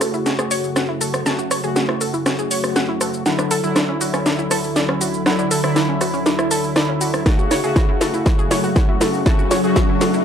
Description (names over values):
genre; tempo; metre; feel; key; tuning
melodic techno; 120 BPM; 4/4; straight; F# minor; A4 = 443 Hz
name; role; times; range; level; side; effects
deep dark ambient pad; sustained chords; 0.7-10.2 s; D3 to F#5; -26 LUFS; equal; chorus, built-in reverb, vintage 12-bit sampler grit, sidechain pumping
wide unison pluck; arpeggios; 0.0-10.2 s; C#4 to A5; -24 LUFS; right 1 dB; sidechain pumping, tape echo
analog synth brass; stabs; 0.0-10.2 s; C#3 to F#4; -22 LUFS; left 1 dB; chorus, sidechain pumping, tape echo
house drum kit; drums; 0.0-10.2 s; hi-hat, rim click, shaker, snare drum; -21 LUFS; equal; overdrive, high-pass filter on snare, sidechain pumping on perc, high-pass filter on perc, sidechain pumping on hats, high-pass filter on hats, high-pass filter on room
electronic kick drum; drums; 7.3-9.9 s; none; -17 LUFS; equal; overdrive
riser; sound effects; 8.5-10.2 s; none; -31 LUFS; right 1 dB; none
room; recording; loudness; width
light reverb; dry, gritty hardware recording; -16 LUFS; side -8 dB against mid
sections
0.0-10.2 A section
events
build-up 0.0-10.2; drum fill 0.0-10.2; filter sweep on analog polysynth 0.0-10.2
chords
0.0 F#m; 3.3 Dadd9; 7.3 F#m